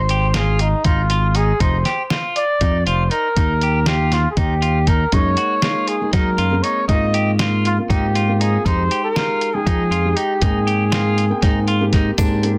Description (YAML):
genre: progressive instrumental, band music in an uneven meter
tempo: 238 BPM (eighths)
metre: 7/8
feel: straight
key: Ab major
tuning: A4 = 440 Hz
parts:
  - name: dark trumpet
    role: melody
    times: 0.0-11.7 s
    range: Eb4 to Eb5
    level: -24 LUFS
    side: equal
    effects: delay
  - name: fingered electric bass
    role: bass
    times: 0.0-12.6 s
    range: F1 to Gb3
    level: -21 LUFS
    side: equal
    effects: none
  - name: clean electric guitar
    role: arpeggios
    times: 0.1-12.5 s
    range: D4 to G4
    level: -27 LUFS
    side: equal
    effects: none
  - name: lo-fi sampler-style drum kit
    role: drums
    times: 0.1-12.6 s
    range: hi-hat, kick drum, snare drum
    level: -22 LUFS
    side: equal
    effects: none
  - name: dark grand piano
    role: accompaniment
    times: 5.1-12.6 s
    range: Ab3 to G5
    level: -28 LUFS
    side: equal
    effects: none
  - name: egg shaker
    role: percussion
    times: 12.2-12.4 s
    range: none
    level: -41 LUFS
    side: equal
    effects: none
room: light reverb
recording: dense, heavily limited modern master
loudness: -18 LUFS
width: mono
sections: 0.0-12.2 A section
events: none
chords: 0.0 Ab6; 1.6 F5; 3.4 Eb; 5.1 Gb6; 6.9 Ab6; 8.7 Fm7; 10.4 Abmaj7